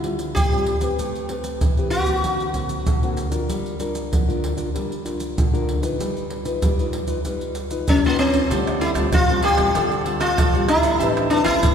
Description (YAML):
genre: samba and choro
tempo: 96 BPM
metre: 4/4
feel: straight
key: D minor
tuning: A4 = 443 Hz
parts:
  - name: sitar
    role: melody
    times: 0.0-3.1, 7.9-11.7 s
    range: Bb3 to G4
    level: -20 LUFS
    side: left 1 dB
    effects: none
  - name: nylon-string guitar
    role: accompaniment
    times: 0.0-11.7 s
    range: A2 to B4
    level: -25 LUFS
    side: left 1 dB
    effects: none
  - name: pandeiro, maracas, surdo and tamborim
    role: percussion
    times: 0.0-11.7 s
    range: none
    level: -22 LUFS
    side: right 1 dB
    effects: none
  - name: cavaquinho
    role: accompaniment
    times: 8.5-11.6 s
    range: F4 to A5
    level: -29 LUFS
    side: right 4 dB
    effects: none
  - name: upright bass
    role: bass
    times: 8.5-11.7 s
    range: A1 to D3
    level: -30 LUFS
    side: equal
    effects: none
room: wet concert hall reverb, RT60 2.4 s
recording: recorded in a church or concert hall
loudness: -18 LUFS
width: side -7 dB against mid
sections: 0.0-8.5 A section; 8.5-11.7 B section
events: none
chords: 0.0 Dm11; 1.0 Am9; 2.2 D7alt; 3.5 Gm7; 6.0 Gaug7; 8.5 Dm11; 11.0 Am9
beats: 0.35 | 0.98 1.61 2.23 2.86 | 3.49 4.12 4.74 5.37 | 6.00 6.62 7.25 7.88 | 8.50 9.13 9.75 10.38 | 11.01 11.63